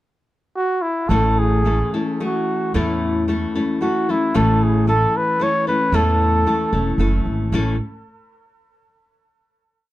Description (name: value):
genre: mexican folk, mariachi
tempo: 112 BPM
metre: 3/4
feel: rubato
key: A major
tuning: A4 = 440 Hz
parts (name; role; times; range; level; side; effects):
- mellow trumpet; melody; 0.6-7.0 s; E4 to C#5; -21 LUFS; equal; tape echo
- nylon-string guitar; accompaniment; 1.1-7.8 s; A2 to A4; -21 LUFS; left 3 dB; none
- upright bass; bass; 1.1-7.8 s; E1 to E2; -20 LUFS; right 1 dB; none
room: light reverb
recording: dark, warm production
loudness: -16 LUFS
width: side -15 dB against mid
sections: 0.0-1.1 pickup bar; 1.1-7.5 A section; 7.5-9.1 final chord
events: none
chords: 0.0 N.C.; 1.1 A